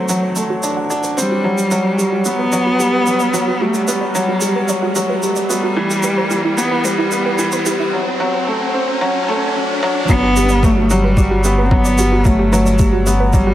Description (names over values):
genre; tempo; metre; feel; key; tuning
piano and strings electronica; 111 BPM; 4/4; straight; G major; A4 = 440 Hz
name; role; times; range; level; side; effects
rich cello; melody; 0.0-13.5 s; F#3 to C4; -18 LUFS; equal; none
warbly dusty pluck; arpeggios; 0.0-13.5 s; E4 to F#5; -24 LUFS; right 3 dB; chorus, sidechain pumping, tape echo
felt-muted upright piano; riff; 0.0-13.5 s; E3 to D4; -18 LUFS; equal; tape echo
riser; sound effects; 0.0-10.1 s; none; -24 LUFS; equal; none
shaker; drums; 0.1-13.4 s; none; -25 LUFS; right 3 dB; high-pass filter on perc, high-pass filter on room
warm sub bass; bass; 10.1-13.5 s; G1; -17 LUFS; equal; sidechain pumping
electronic kick drum; drums; 10.1-13.4 s; none; -15 LUFS; equal; none
room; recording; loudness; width
moderate lush hall reverb, RT60 2.0 s; high-pass filter; -13 LUFS; side -12 dB against mid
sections
0.0-10.1 A section; 10.1-13.5 B section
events
build-up 0.0-10.1; riser 0.0-10.1; filter sweep on synth arpeggio sound 0.0-10.1; drop 10.1-13.5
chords
0.0 D7; 1.4 Gmaj7; 5.8 Cmaj7 (rootless); 7.9 F#dim; 10.1 Gmaj7